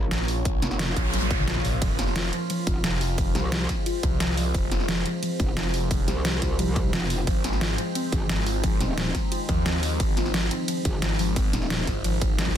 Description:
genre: dark technical drum and bass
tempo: 176 BPM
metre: 4/4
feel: straight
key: F minor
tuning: A4 = 439 Hz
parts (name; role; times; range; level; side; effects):
- deep dark ambient pad; sustained chords; 0.0-12.6 s; Ab3 to Db5; -33 LUFS; equal; chorus, built-in reverb, sidechain pumping
- metallic wobble bass; bass; 0.0-11.9 s; Eb1 to C2; -27 LUFS; equal; chorus
- phased detuned saw bass; bass; 0.1-12.6 s; F1 to Eb2; -27 LUFS; equal; phaser, overdrive, sidechain pumping
- dubstep drum kit; drums; 0.1-12.5 s; hi-hat, ride cymbal, snare drum, toms; -29 LUFS; equal; overdrive
- electronic kick drum; drums; 0.5-12.5 s; none; -27 LUFS; equal; overdrive
- noise sweep; sound effects; 0.8-1.8 s; none; -33 LUFS; right 3 dB; none
- soft round pluck; arpeggios; 1.8-12.4 s; F3 to F4; -32 LUFS; left 2 dB; wide subtle chorus, sidechain pumping, ping-pong delay
room: little or no reverb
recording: dense, heavily limited modern master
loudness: -22 LUFS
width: side -10 dB against mid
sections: 0.0-12.6 A section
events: noise sweep 0.8-1.8; drum fill 1.1-1.8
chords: 0.0 Bbm; 1.8 Fm; 7.3 Ab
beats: 0.11 | 0.45 0.80 1.14 1.48 | 1.82 2.16 2.50 2.84 | 3.18 3.52 3.86 4.20 | 4.54 4.89 5.23 5.57 | 5.91 6.25 6.59 6.93 | 7.27 7.61 7.95 8.29 | 8.64 8.98 9.32 9.66 | 10.00 10.34 10.68 11.02 | 11.36 11.70 12.04 12.39

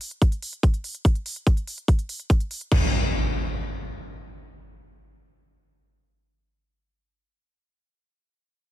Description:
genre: psychedelic trance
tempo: 144 BPM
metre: 4/4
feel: straight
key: none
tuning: none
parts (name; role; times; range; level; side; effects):
- techno drum kit; drums; 0.0-2.8 s; crash cymbal, hi-hat; -34 LUFS; left 2 dB; none
- electronic kick drum; drums; 0.2-2.8 s; none; -19 LUFS; equal; none
- impact; sound effects; 2.7-7.2 s; none; -26 LUFS; equal; none
room: digital ambience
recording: none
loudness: -22 LUFS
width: side -14 dB against mid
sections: 0.0-2.7 A section; 2.7-6.0 B section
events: none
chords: none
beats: 0.22 0.63 | 1.05 1.47 1.88 2.30 | 2.72 3.13 3.55 3.97 | 4.38 4.80 5.22 5.63

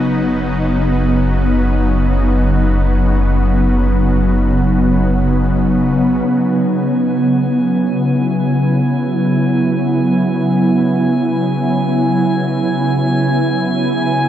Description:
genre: ambient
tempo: free time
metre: none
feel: none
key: unclear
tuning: A4 = 440 Hz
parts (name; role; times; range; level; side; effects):
- ethereal airy pad; sustained chords; 0.0-14.3 s; C#3 to E4; -14 LUFS; equal; ensemble chorus, built-in reverb
- warm sub bass; bass; 0.0-6.2 s; F#1; -16 LUFS; equal; none
- drifting glass-harmonics texture; texture; 7.0-14.3 s; G#5; -24 LUFS; equal; chorus, built-in reverb
room: wet huge ambient reverb, RT60 8.4 s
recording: none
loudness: -13 LUFS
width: side -11 dB against mid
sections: 0.0-6.3 A section; 6.3-14.3 B section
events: fade-in on synth texture 6.3-14.3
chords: 0.0 Badd9/F#; 6.3 F#9sus4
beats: free time

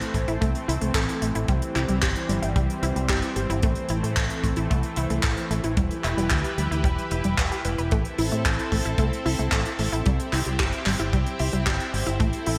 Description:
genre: italo disco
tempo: 112 BPM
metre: 4/4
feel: straight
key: A minor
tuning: A4 = 439 Hz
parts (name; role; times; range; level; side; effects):
- lush unison pad; sustained chords; 0.0-12.6 s; E3 to B4; -32 LUFS; equal; chorus
- tight funk drum kit; drums; 0.0-12.6 s; handclaps, hi-hat; -32 LUFS; equal; studio reverb, gated reverb
- unison pluck; arpeggios; 0.1-12.5 s; G3 to B4; -32 LUFS; equal; digital delay
- fingered electric bass with an envelope filter; bass; 0.1-12.6 s; E1 to A2; -30 LUFS; equal; tube saturation
- kick drum; drums; 0.1-12.3 s; none; -28 LUFS; equal; studio reverb
room: moderate lush hall reverb, RT60 1.7 s, small room ambience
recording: bright 1980s-style digital production, vinyl crackle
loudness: -25 LUFS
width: mono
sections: 0.0-12.6 A section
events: none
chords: 0.0 Am; 1.5 C; 3.6 Am; 5.8 Em; 7.9 Am; 10.1 C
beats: 0.42 0.95 | 1.49 2.02 2.56 3.10 | 3.63 4.17 4.70 5.24 | 5.77 6.31 6.85 7.38 | 7.92 8.45 8.99 9.52 | 10.06 10.60 11.13 11.67 | 12.20

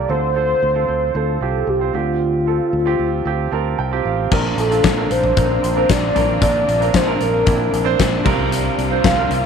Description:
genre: piano-driven pop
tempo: 114 BPM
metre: 4/4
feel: straight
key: unclear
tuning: A4 = 437 Hz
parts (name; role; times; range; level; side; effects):
- warm velvety synth lead; melody; 0.0-9.4 s; F4 to F5; -19 LUFS; left 1 dB; chorus
- clear baby grand piano; accompaniment; 0.0-9.5 s; Bb2 to A5; -21 LUFS; right 11 dB; none
- fingered electric bass; bass; 0.0-9.5 s; A1 to D2; -23 LUFS; left 1 dB; none
- dark studio string section; sustained chords; 4.3-9.5 s; C3 to F4; -27 LUFS; left 11 dB; none
- huge arena drum kit; drums; 4.3-9.4 s; crash cymbal, hi-hat, kick drum, snare drum, toms; -19 LUFS; left 4 dB; none
room: light reverb, small room ambience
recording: 1960s-style stereo with parts hard left and right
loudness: -15 LUFS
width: side -6 dB against mid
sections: 0.0-4.3 A section; 4.3-9.5 B section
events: grand piano fill 3.3-4.3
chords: 0.1 F/D; 1.9 Csus4/D; 4.3 Bbadd9; 8.3 C7sus4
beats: | 0.10 0.62 1.15 1.68 | 2.21 2.73 3.26 3.79 | 4.31 4.84 5.37 5.89 | 6.42 6.94 7.47 7.99 | 8.52 9.04

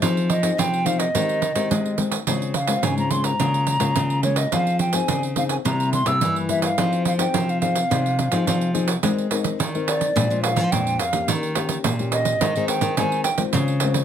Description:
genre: samba and choro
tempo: 106 BPM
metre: 4/4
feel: straight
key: F minor, Ab major from 9.0 s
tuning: A4 = 441 Hz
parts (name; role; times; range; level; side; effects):
- nylon-string guitar; accompaniment; 0.0-14.0 s; F2 to Bb4; -26 LUFS; left 7 dB; none
- nylon-string guitar; bass; 0.0-14.0 s; Bb2 to Ab3; -24 LUFS; equal; none
- pandeiro; percussion; 0.0-14.0 s; none; -25 LUFS; right 7 dB; none
- hollow concert flute; melody; 0.3-13.4 s; Db5 to E6; -24 LUFS; right 1 dB; none
room: light reverb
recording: close, detailed microphones, faint mains hum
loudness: -19 LUFS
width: side -9 dB against mid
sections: 0.0-9.0 A section; 9.0-14.0 B section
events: flute solo 9.0-14.0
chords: 0.0 Fm7; 1.1 Abmaj7/Eb; 2.3 Dbmaj7; 3.4 Bbm7/Db; 4.5 Fm7; 5.7 C7; 6.8 Fm7; 9.0 Abadd9; 10.2 Bb7; 11.3 Eb7; 12.4 Ab/Eb; 13.5 Dbmaj7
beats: | 0.02 0.58 1.15 1.71 | 2.27 2.83 3.40 3.96 | 4.53 5.09 5.65 6.21 | 6.78 7.34 7.91 8.47 | 9.03 9.60 10.16 10.72 | 11.29 11.85 12.41 12.98 | 13.54

